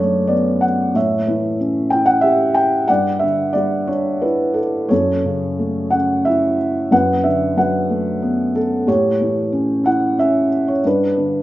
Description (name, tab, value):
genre	classical, lyrical solo piano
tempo	91 BPM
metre	3/4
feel	rubato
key	unclear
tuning	A4 = 441 Hz
part	felt-muted upright piano	solo	0.0-11.4 s	F#2 to G5	-15 LUFS	equal	none
room	moderate recital hall reverb, RT60 1.5 s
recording	nothing above 8.0 kHz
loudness	-15 LUFS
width	side -15 dB against mid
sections	0.0-11.4 A section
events	none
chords	0.0 D6/F#; 1.0 A7; 2.9 Em7/G; 4.9 F#m7; 6.9 D6/F#; 8.9 A7; 10.8 Em7/G (rootless)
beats	0.29 | 0.95 1.60 2.23 | 2.89 3.55 4.22 | 4.91 5.59 6.26 | 6.91 7.57 8.22 | 8.87 9.52 10.17 | 10.83